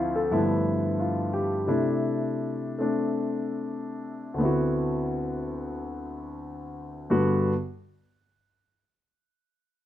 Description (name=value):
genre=solo jazz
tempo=88 BPM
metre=4/4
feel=swing 66% on 8ths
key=G major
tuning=A4 = 439 Hz
part: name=warm grand piano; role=solo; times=0.0-7.5 s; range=D2 to A4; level=-25 LUFS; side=left 1 dB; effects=none
room=moderate studio reverb, RT60 0.8 s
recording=band playing live in one room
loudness=-25 LUFS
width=side -12 dB against mid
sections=0.0-1.7 A section; 1.7-7.1 B section; 7.1-9.8 C section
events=none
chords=0.3 G13; 1.7 C69; 4.4 D13; 7.1 Gmaj7